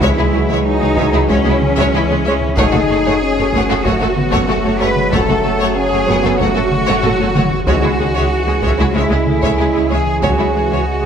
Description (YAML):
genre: cinematic, hybrid orchestral and electronic film score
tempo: 94 BPM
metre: 4/4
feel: straight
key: C# minor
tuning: A4 = 440 Hz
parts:
  - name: warm symphonic violin section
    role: melody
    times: 0.0-11.1 s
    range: G#4 to F#5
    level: -27 LUFS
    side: left 5 dB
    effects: none
  - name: rich chamber violin section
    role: second line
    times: 0.0-10.8 s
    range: E4 to C#5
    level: -23 LUFS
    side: left 2 dB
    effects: none
  - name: clear symphonic viola section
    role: accompaniment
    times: 0.0-11.1 s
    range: G#3 to A3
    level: -22 LUFS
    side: right 1 dB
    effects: none
  - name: warm French horn section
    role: sustained chords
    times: 0.0-11.1 s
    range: D#3 to E4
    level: -21 LUFS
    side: left 5 dB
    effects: none
  - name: warm trombone section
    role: sustained chords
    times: 0.0-11.1 s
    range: C#3 to G#4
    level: -22 LUFS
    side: right 4 dB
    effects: none
  - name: clear symphonic double bass section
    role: bass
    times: 0.0-11.1 s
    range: C#2 to F#2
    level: -23 LUFS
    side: right 3 dB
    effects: none
  - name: pure sine sub bass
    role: bass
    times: 0.0-11.1 s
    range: F#1 to C#2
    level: -22 LUFS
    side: equal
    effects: none
  - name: rich symphonic cello section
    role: bass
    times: 0.0-11.1 s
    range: C#4 to B4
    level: -19 LUFS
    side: right 2 dB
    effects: none
  - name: taiko ensemble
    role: drums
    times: 0.0-10.8 s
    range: none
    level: -21 LUFS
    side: equal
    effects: none
room: moderate scoring stage reverb, RT60 1.8 s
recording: none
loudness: -12 LUFS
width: side -8 dB against mid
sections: 0.0-11.1 A section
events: drum fill 7.0-7.7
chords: 0.0 C#m; 2.6 F#m; 7.7 C#m